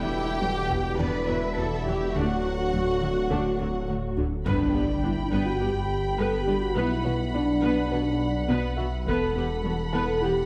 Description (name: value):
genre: cinematic, hybrid orchestral and electronic film score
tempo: 104 BPM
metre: 4/4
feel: straight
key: E minor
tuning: A4 = 439 Hz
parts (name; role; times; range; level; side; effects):
- warm symphonic violin section; melody; 0.0-3.9 s; D5 to G5; -38 LUFS; equal; none
- warm symphonic violin section; second line; 0.0-10.5 s; D4 to B5; -37 LUFS; equal; none
- rich symphonic viola section; accompaniment; 0.0-10.3 s; D3 to B4; -35 LUFS; equal; none
- clear trombone section; sustained chords; 0.0-4.2 s; B2 to F#3; -38 LUFS; equal; none
- dark French horn section; sustained chords; 0.0-10.5 s; A3 to A4; -31 LUFS; equal; none
- dark detuned saw bass; bass; 0.0-10.5 s; D1 to B1; -33 LUFS; equal; none
- dark symphonic cello section; bass; 0.0-10.3 s; E2 to B4; -36 LUFS; equal; none
- warm baby grand piano; texture; 0.0-10.5 s; G3 to A5; -42 LUFS; equal; none
- tight sequenced synth; arpeggios; 0.4-10.4 s; D3 to B4; -38 LUFS; equal; none
- warm symphonic double bass section; bass; 0.4-4.3 s; D2 to E2; -36 LUFS; equal; none
- taiko ensemble; drums; 0.7-1.0, 4.5-5.6, 9.1-10.2 s; none; -40 LUFS; equal; none
- impact; sound effects; 4.5-6.8 s; none; -36 LUFS; equal; none
room: wet scoring stage reverb, RT60 1.5 s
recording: none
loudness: -26 LUFS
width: mono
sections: 0.0-4.5 A section; 4.5-10.5 B section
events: impact 4.5-6.8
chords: 0.0 Emadd9; 2.1 D; 4.5 G; 6.8 Bm; 9.1 Emadd9